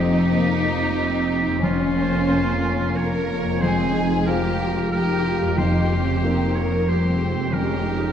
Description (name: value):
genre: cinematic, emotional film score for orchestra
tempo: 92 BPM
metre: 3/4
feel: rubato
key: unclear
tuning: A4 = 440 Hz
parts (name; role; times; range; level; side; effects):
- dark symphonic violin section; melody; 0.0-8.1 s; Db4 to Bb4; -30 LUFS; left 2 dB; none
- clear oboe; second line; 0.0-8.1 s; F4 to Db5; -28 LUFS; right 1 dB; none
- warm symphonic violin section; second line; 0.0-8.1 s; Db4 to Bb4; -29 LUFS; equal; none
- warm grand piano; accompaniment; 0.0-8.1 s; F2 to Db5; -27 LUFS; left 2 dB; none
- warm symphonic viola section; accompaniment; 0.0-8.1 s; F3 to C5; -29 LUFS; right 3 dB; none
- warm French horn section; sustained chords; 0.0-8.1 s; Db3 to G4; -28 LUFS; equal; none
- concert harp; arpeggios; 0.0-8.1 s; F2 to C6; -30 LUFS; left 4 dB; none
- rich symphonic cello section; bass; 0.0-8.1 s; F2; -25 LUFS; equal; none
- warm studio double bass section; bass; 0.0-8.1 s; F1; -28 LUFS; right 2 dB; none
room: wet scoring stage reverb, RT60 1.9 s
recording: dark, warm production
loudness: -19 LUFS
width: side -8 dB against mid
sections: 0.0-8.1 A section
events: none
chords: 0.0 Cm7/F; 1.6 Bbm/F; 3.6 Fm; 5.6 Cm7/F; 7.5 Db/F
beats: 0.32 0.97 | 1.62 2.27 2.95 | 3.61 4.26 4.91 | 5.57 6.22 6.87 | 7.52